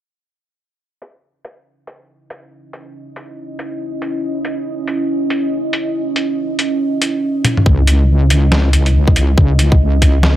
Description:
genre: deep dubstep.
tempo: 140 BPM.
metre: 4/4.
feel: swing 60% on 16ths, half-time.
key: C# minor.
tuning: A4 = 439 Hz.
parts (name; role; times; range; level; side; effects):
deep dark ambient pad; sustained chords; 3.0-10.4 s; C#4 to D#5; -20 LUFS; right 2 dB; chorus, built-in reverb.
trip hop sampler-style drum kit; drums; 1.0-10.3 s; hi-hat, snare drum, toms; -18 LUFS; left 1 dB; overdrive, low-pass filter on hats, low-pass filter on toms, low-pass filter on snare.
wobble bass; bass; 7.7-10.4 s; C#2; -11 LUFS; equal; chorus.
electronic kick drum; drums; 7.7-10.1 s; none; -12 LUFS; equal; none.
room: digital ambience.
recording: dry, gritty hardware recording, low-pass filter.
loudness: -13 LUFS.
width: side -13 dB against mid.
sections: 0.8-7.7 A section; 7.7-10.4 B section.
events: filter sweep on drum 0.8-7.7; filter sweep 0.8-7.7; drum fill 7.4.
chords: 0.8 C#madd9.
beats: | 0.80 1.23 1.66 2.09 | 2.52 2.95 3.38 3.80 | 4.23 4.66 5.09 5.52 | 5.95 6.38 6.80 7.23 | 7.66 8.09 8.52 8.95 | 9.38 9.80 10.23.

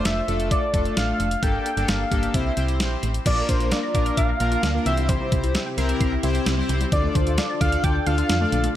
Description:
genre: synth-pop.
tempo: 131 BPM.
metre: 4/4.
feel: straight.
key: D minor.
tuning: A4 = 440 Hz.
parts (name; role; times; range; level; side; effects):
octave-doubled lead; melody; 0.0-8.7 s; C5 to G5; -26 LUFS; equal; chorus, analog delay.
analog synth brass; accompaniment; 0.0-8.7 s; A3 to F5; -27 LUFS; left 2 dB; chorus, analog delay.
solid FM bass; bass; 0.1-8.7 s; F1 to F2; -24 LUFS; equal; none.
detuned 8-bit digital drum machine; drums; 0.1-8.7 s; crash cymbal, hi-hat, kick drum, snare drum; -25 LUFS; equal; none.
warm analog pad; sustained chords; 3.3-8.7 s; C3 to A4; -32 LUFS; left 1 dB; chorus.
resonant blip pluck; arpeggios; 3.3-8.7 s; E3 to F6; -32 LUFS; right 1 dB; chorus, phaser, analog delay.
room: light reverb.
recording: echo-heavy mix.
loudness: -20 LUFS.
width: side -12 dB against mid.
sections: 0.0-3.3 A section; 3.3-8.8 B section.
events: none.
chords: 0.0 Dm/F; 1.4 Gmadd9; 2.3 C; 3.3 Bb; 4.9 C; 6.9 Dm.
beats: 0.05 0.51 0.97 | 1.43 1.88 2.34 2.80 | 3.26 3.72 4.17 4.63 | 5.09 5.55 6.01 6.46 | 6.92 7.38 7.84 8.30.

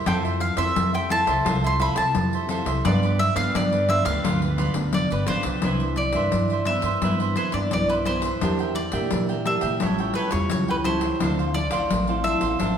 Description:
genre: samba and choro.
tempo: 86 BPM.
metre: 4/4.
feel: straight.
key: C major.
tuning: A4 = 440 Hz.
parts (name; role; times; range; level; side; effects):
cavaquinho; accompaniment; 0.0-12.8 s; D4 to G5; -29 LUFS; right 3 dB; none.
nylon-string guitar; accompaniment; 0.0-12.8 s; G2 to A4; -29 LUFS; equal; none.
upright bass; bass; 0.0-12.8 s; F1 to Bb2; -27 LUFS; equal; none.
bowl-back mandolin; melody; 0.1-12.8 s; B4 to C6; -26 LUFS; equal; none.
pandeiro; percussion; 0.1-12.8 s; none; -27 LUFS; left 2 dB; none.
room: wet recital hall reverb, RT60 1.4 s.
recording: recorded in a church or concert hall.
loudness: -20 LUFS.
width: side -8 dB against mid.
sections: 0.0-5.6 A section; 5.6-12.8 B section.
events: none.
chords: 0.1 Fmaj7; 2.8 G7; 5.6 Cmaj9; 8.4 Em7b5; 9.8 A7b13; 11.2 Dm9.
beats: | 0.07 0.76 1.46 2.15 | 2.85 3.54 4.24 4.94 | 5.63 6.33 7.03 7.72 | 8.42 9.12 9.81 10.51 | 11.21 11.90 12.60.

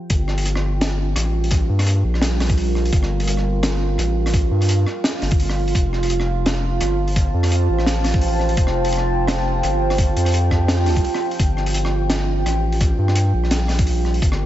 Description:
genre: half-time drum and bass.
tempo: 170 BPM.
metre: 4/4.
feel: swing 56% on 16ths, half-time.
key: G minor.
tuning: A4 = 440 Hz.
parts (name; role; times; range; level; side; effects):
deep dark ambient pad; sustained chords; 0.0-14.5 s; G3 to A5; -24 LUFS; right 3 dB; chorus, built-in reverb, vintage 12-bit sampler grit, sidechain pumping.
saturated sub bass; bass; 0.1-14.5 s; F1 to G2; -19 LUFS; equal; none.
crunchy breakbeat drum kit; drums; 0.1-14.4 s; hi-hat, rim click, snare drum; -25 LUFS; equal; none.
electronic kick drum; drums; 0.1-14.3 s; none; -18 LUFS; equal; none.
room: light reverb, studio reverb.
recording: nothing above 7.8 kHz.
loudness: -17 LUFS.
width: side -12 dB against mid.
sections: 0.1-14.5 A section.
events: drop 0.1-14.5; break 11.0-11.4.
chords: 0.1 Gm7; 5.7 Fadd9; 11.4 Gm7.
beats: | 0.10 0.46 0.81 1.16 | 1.51 1.87 2.22 2.57 | 2.92 3.28 3.63 3.98 | 4.34 4.69 5.04 5.40 | 5.75 6.10 6.46 6.81 | 7.16 7.51 7.87 8.22 | 8.57 8.93 9.28 9.63 | 9.98 10.34 10.69 11.04 | 11.40 11.75 12.10 12.46 | 12.81 13.16 13.51 13.87 | 14.22.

